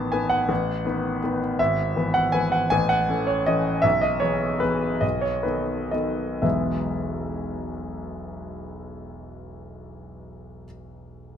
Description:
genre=classical, piano waltz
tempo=114-172 BPM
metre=3/4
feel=rubato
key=E major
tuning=A4 = 442 Hz
part: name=clear grand piano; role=solo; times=0.0-11.4 s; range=E1 to A5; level=-23 LUFS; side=equal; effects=none
room=moderate stone room reverb, RT60 1.2 s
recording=minimal, uncompressed stereo recording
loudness=-21 LUFS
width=side -8 dB against mid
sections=0.0-6.4 A section; 6.4-9.4 B section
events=slowing down 3.3-6.4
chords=0.0 B7/A; 1.6 E/G#; 2.7 F#m7/A; 3.8 E/B; 5.0 B7; 6.4 E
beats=0.13 | 0.49 0.85 1.23 | 1.59 1.95 2.34 | 2.71 3.08 3.46 | 3.84 4.22 4.63 | 5.03 5.45 5.93 | 6.43 6.91 7.41 | 7.93 8.43 8.92

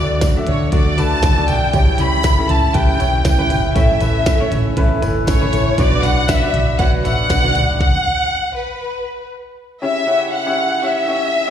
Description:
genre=piano-driven pop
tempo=119 BPM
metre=4/4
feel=swing 56% on 16ths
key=unclear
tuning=A4 = 441 Hz
part: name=warm studio violin section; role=melody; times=0.0-11.5 s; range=B4 to B5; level=-19 LUFS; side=left 1 dB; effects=plate reverb, slapback echo
part: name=warm upright piano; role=accompaniment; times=0.0-11.5 s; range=A2 to F#5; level=-22 LUFS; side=left 4 dB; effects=plate reverb, slapback echo
part: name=fingerpicked steel-string acoustic guitar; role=riff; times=0.0-7.8 s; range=A2 to B4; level=-24 LUFS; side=right 7 dB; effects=slapback echo
part: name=vintage muted fingered electric bass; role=bass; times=0.0-7.8 s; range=G1 to D2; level=-19 LUFS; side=equal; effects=none
part: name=glitchy drum kit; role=drums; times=0.2-7.9 s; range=hi-hat, kick drum, snare drum, toms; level=-17 LUFS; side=equal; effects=none
part: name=tambourine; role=percussion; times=0.2-7.7 s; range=none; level=-38 LUFS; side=left 3 dB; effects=none
room=moderate club reverb, RT60 0.5 s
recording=live gig heard through the venue's PA, recital hall reverb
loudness=-14 LUFS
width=side -9 dB against mid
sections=0.0-9.8 A section; 9.8-11.5 A section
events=stop 7.8-9.8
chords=0.0 D; 1.7 C#dim; 5.8 Bm; 7.8 N.C.; 9.8 C#dim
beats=0.22 0.72 1.23 | 1.74 2.24 2.75 3.25 | 3.76 4.27 4.77 5.28 | 5.78 6.29 6.79 7.30 | 7.80 8.31 8.81 9.32 | 9.82 10.33 10.84 11.34

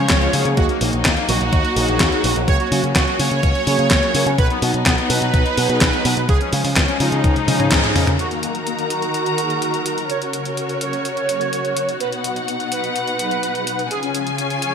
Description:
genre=italo disco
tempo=126 BPM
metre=4/4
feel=straight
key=Eb minor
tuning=A4 = 440 Hz
part: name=analog synth brass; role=melody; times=0.0-14.7 s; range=Bb3 to Db5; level=-22 LUFS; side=right 2 dB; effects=chorus, digital delay
part: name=warm studio string section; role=sustained chords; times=0.0-14.7 s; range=B2 to Bb5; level=-23 LUFS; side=left 2 dB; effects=none
part: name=mellow synth brass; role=stabs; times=0.0-14.7 s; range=Db3 to B4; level=-26 LUFS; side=equal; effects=chorus
part: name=picked electric bass with an envelope filter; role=bass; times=0.0-8.2 s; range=Bb1 to Db3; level=-22 LUFS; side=equal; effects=none
part: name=clean 12-bit digital drum machine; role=drums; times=0.1-14.7 s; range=handclaps, hi-hat, snare drum, toms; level=-21 LUFS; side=left 1 dB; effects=gated reverb
part: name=electronic kick drum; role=drums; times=0.1-7.8 s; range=none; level=-19 LUFS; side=equal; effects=none
room=moderate lush hall reverb, RT60 2.1 s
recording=bright 1980s-style digital production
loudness=-16 LUFS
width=side -7 dB against mid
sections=0.0-8.2 A section; 8.2-14.7 B section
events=drum fill 7.2-8.2; band accent 7.7; filter sweep on analog polysynth 8.2-14.7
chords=0.0 Db; 0.6 Ebm; 2.5 Gb/Db; 4.4 B; 6.3 Db; 8.2 Ebm; 10.1 Gb/Db; 12.0 B; 13.9 Db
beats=0.10 | 0.57 1.05 1.53 2.00 | 2.48 2.96 3.43 3.91 | 4.38 4.86 5.34 5.81 | 6.29 6.76 7.24 7.72 | 8.19 8.67 9.14 9.62 | 10.10 10.57 11.05 11.53 | 12.00 12.48 12.96 13.43 | 13.91 14.38

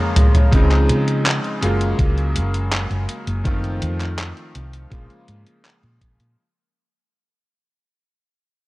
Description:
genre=vaporwave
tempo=82 BPM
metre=4/4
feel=straight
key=unclear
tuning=A4 = 440 Hz
part: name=bright electric grand piano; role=accompaniment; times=0.0-6.4 s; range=Db3 to F4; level=-23 LUFS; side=equal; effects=lush chorus, analog delay
part: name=lush unison pad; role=sustained chords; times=0.0-6.4 s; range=Gb3 to C6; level=-32 LUFS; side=equal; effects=chorus, vintage 12-bit sampler grit
part: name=detuned 8-bit digital drum machine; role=drums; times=0.2-6.3 s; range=handclaps, hi-hat, toms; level=-18 LUFS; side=equal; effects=overdrive
part: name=hollow-body short-scale fingered electric bass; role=bass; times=0.5-6.3 s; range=Gb1 to Db3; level=-20 LUFS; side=equal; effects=none
part: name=electronic kick drum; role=drums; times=0.5-6.2 s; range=none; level=-19 LUFS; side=equal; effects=overdrive
room=little or no reverb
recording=dry, gritty hardware recording, cassette tape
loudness=-16 LUFS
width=side -19 dB against mid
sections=0.5-6.4 A section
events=break 0.0-0.5; drum fill 0.0-0.5; fade-out 0.5-6.4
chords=0.0 Bbm7; 0.5 Dbmaj9; 1.6 Gbmaj9; 3.5 F7; 4.9 Bbm7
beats=| 0.53 1.26 1.99 2.72 | 3.45 4.18 4.92 5.65

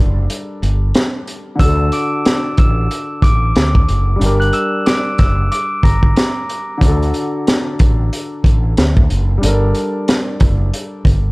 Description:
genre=hip hop, boom-bap hip-hop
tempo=92 BPM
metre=4/4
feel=swing 60% on 16ths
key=D major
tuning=A4 = 441 Hz
part: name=warm concert grand piano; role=accompaniment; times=0.0-11.3 s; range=D3 to Bb4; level=-22 LUFS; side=left 1 dB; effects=cassette tape, high-pass filter, low-pass filter
part: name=fretless electric bass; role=bass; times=0.0-11.3 s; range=F#1 to D2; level=-15 LUFS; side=equal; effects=wide subtle chorus
part: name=crunchy breakbeat drum kit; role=drums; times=0.3-11.2 s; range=hi-hat, kick drum, snare drum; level=-14 LUFS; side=equal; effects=none
part: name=glockenspiel with rubber mallets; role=melody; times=1.6-6.3 s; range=Bb5 to F#7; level=-21 LUFS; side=equal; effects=high-pass filter, low-pass filter, analog delay
room=small room ambience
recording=dry, gritty hardware recording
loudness=-13 LUFS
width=side -25 dB against mid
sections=0.0-11.3 A section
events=break 0.3-1.6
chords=0.0 Gmadd9; 1.6 D; 4.2 Gm; 6.8 D; 9.4 Gmadd9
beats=0.29 0.95 | 1.60 2.25 2.90 3.55 | 4.21 4.86 5.51 6.16 | 6.82 7.47 8.12 8.77 | 9.42 10.08 10.73

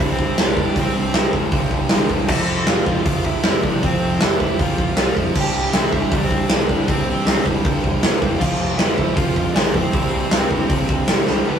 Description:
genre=punk rock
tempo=157 BPM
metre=4/4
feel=straight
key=C major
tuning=A4 = 440 Hz
part: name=dark smooth lead guitar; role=melody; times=0.0-11.6 s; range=B3 to A5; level=-25 LUFS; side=right 1 dB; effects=overdrive
part: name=biting overdriven guitar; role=riff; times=0.0-11.6 s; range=C2 to G3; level=-28 LUFS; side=equal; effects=none
part: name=distorted electric guitar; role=riff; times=0.0-11.6 s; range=C2 to G4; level=-25 LUFS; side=left 2 dB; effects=distortion
part: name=overdriven semi-hollow guitar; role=riff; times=0.0-11.6 s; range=C2 to G3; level=-28 LUFS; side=right 5 dB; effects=none
part: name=growling picked electric bass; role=bass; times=0.0-11.6 s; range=C1 to C2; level=-29 LUFS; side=equal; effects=none
part: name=big rock drum kit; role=drums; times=0.0-11.4 s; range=crash cymbal, hi-hat, kick drum, snare drum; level=-18 LUFS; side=right 1 dB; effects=none
room=light reverb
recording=rough rehearsal-room recording, tube saturation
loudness=-16 LUFS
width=side -8 dB against mid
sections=0.0-11.5 A section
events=drum fill 11.3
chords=0.0 C5; 2.3 F; 5.3 C; 8.4 F5; 9.9 C5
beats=0.38 | 0.76 1.14 1.52 1.91 | 2.29 2.67 3.06 3.44 | 3.82 4.20 4.59 4.97 | 5.35 5.73 6.11 6.50 | 6.88 7.26 7.64 8.02 | 8.41 8.79 9.17 9.55 | 9.93 10.32 10.70 11.08 | 11.46

